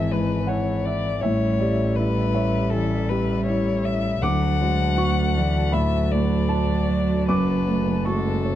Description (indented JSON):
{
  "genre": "neoclassical piano and strings",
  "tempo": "80 BPM",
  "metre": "4/4",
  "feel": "rubato",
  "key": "unclear",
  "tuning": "A4 = 439 Hz",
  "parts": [
    { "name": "muted violin", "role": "melody", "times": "0.0-8.6 s", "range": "A4 to F#5", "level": "-28 LUFS", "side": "left 6 dB", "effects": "none" },
    { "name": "muted cello", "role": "second line", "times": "0.0-8.6 s", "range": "E3 to A3", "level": "-27 LUFS", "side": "right 3 dB", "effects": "none" },
    { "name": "dark concert grand piano", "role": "accompaniment", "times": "0.0-8.6 s", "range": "D2 to D6", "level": "-24 LUFS", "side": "right 1 dB", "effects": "none" },
    { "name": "warm analog pad", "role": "sustained chords", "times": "0.0-8.6 s", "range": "F#3 to A5", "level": "-33 LUFS", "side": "left 1 dB", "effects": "chorus" },
    { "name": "muted double bass", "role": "bass", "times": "0.0-8.6 s", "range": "F#1 to D2", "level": "-25 LUFS", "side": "left 1 dB", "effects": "none" }
  ],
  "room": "light reverb",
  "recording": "dark, warm production",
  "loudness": "-20 LUFS",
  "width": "side -12 dB against mid",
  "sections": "0.0-8.6 A section",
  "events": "none",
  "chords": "0.0 C#m/G#; 1.2 A7; 4.2 D; 7.3 F#m"
}